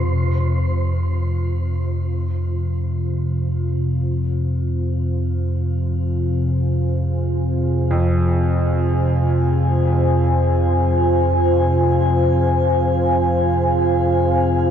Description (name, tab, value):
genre	dark ambient drone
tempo	free time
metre	none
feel	none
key	F minor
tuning	A4 = 439 Hz
part	deep dark ambient pad	sustained chords	0.0-14.7 s	F4 to Ab5	-21 LUFS	equal	chorus, built-in reverb, shimmer reverb
part	deep rumbling drone	drone	0.0-14.7 s	F2 to C3	-19 LUFS	equal	built-in reverb
part	bright baby grand piano	arpeggios	7.9-14.7 s	F2	-28 LUFS	equal	diffuse ambient delay, shimmer reverb
room	wet huge ambient reverb, RT60 8.5 s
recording	dark, warm production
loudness	-17 LUFS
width	side -8 dB against mid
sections	0.1-14.7 A section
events	none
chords	0.1 Fm